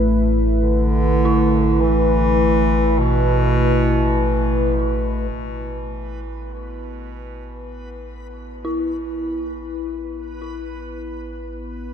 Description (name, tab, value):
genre	dark ambient drone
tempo	free time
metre	none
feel	none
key	unclear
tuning	A4 = 440 Hz
part	sweeping resonant pad	sustained chords	0.0-11.9 s	A3 to B4	-23 LUFS	left 1 dB	chorus
part	deep rumbling drone	drone	0.0-11.9 s	A1	-23 LUFS	equal	built-in reverb, wide subtle chorus
part	clear bass clarinet	melody	0.6-4.7 s	B2 to E3	-22 LUFS	equal	ping-pong delay
part	dark detuned synth bell	arpeggios	1.3-11.9 s	E4	-28 LUFS	right 1 dB	chorus, phaser, ping-pong delay
part	backwards swelling texture	texture	6.0-11.9 s	B4	-42 LUFS	right 2 dB	built-in reverb
room	wet cathedral reverb, RT60 6.6 s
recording	none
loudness	-16 LUFS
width	side -8 dB against mid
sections	0.0-5.3 A section; 5.3-11.9 B section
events	filter sweep on synth drone 5.3-11.9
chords	0.0 Asus2